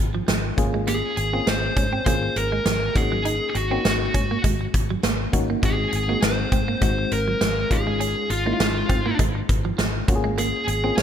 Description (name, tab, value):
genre	1980s-style pop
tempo	101 BPM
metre	4/4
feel	swing 55% on 16ths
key	Ab mixolydian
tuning	A4 = 440 Hz
part	FM electric piano with auto-pan	accompaniment	0.0-11.0 s	Ab3 to Ab4	-29 LUFS	left 3 dB	none
part	vintage muted fingered electric bass	bass	0.0-11.0 s	Ab1 to Ab2	-27 LUFS	equal	none
part	electric guitar at the edge of break-up	riff	0.1-11.0 s	F3 to Eb4	-30 LUFS	right 7 dB	wide subtle chorus
part	big rock drum kit	drums	0.3-11.0 s	hi-hat, kick drum, snare drum	-23 LUFS	equal	gated reverb
part	high-gain lead guitar	melody	0.9-11.0 s	F4 to Db5	-26 LUFS	left 1 dB	distortion, digital delay
room	light reverb, small room ambience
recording	bright 1980s-style digital production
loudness	-20 LUFS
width	side -9 dB against mid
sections	0.0-11.0 A section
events	none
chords	0.0 Dbadd9/Ab; 0.6 Bbm7/Ab; 3.0 Ebm7/Ab; 5.6 Ab7; 7.7 Dbadd9/Ab; 10.1 Bbm7/Ab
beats	0.28 | 0.88 1.47 2.06 2.66 | 3.25 3.85 4.44 5.04 | 5.63 6.22 6.82 7.41 | 8.01 8.60 9.19 9.79 | 10.38 10.97